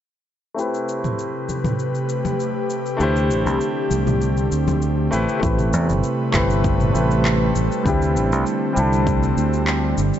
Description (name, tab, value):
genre	sunset chillout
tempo	99 BPM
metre	4/4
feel	straight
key	A minor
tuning	A4 = 444 Hz
part	bright baby grand piano	accompaniment	0.5-10.0 s	G3 to C5	-23 LUFS	left 1 dB	auto-pan, low-pass filter, tape echo
part	airy breathy pad	sustained chords	0.9-10.2 s	C3 to B4	-23 LUFS	equal	chorus
part	deep house drum kit	drums	0.6-10.2 s	cabasa, handclaps, toms	-28 LUFS	right 1 dB	overdrive
part	congas	percussion	1.0-4.8 s	none	-30 LUFS	left 3 dB	none
part	fingered electric bass	bass	3.0-10.1 s	G1 to E2	-20 LUFS	equal	none
part	electronic kick drum	drums	5.4-9.2 s	none	-23 LUFS	equal	overdrive
room	moderate concert hall reverb, RT60 2.2 s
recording	dark, warm production, nothing above 7.8 kHz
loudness	-18 LUFS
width	side -10 dB against mid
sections	0.6-5.4 A section; 5.4-10.2 B section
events	filter sweep on grand piano 0.6-5.4; filter sweep on analog synth pad 0.6-5.4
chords	0.6 Am9; 3.0 D7sus4; 5.1 Am9; 7.9 D7sus4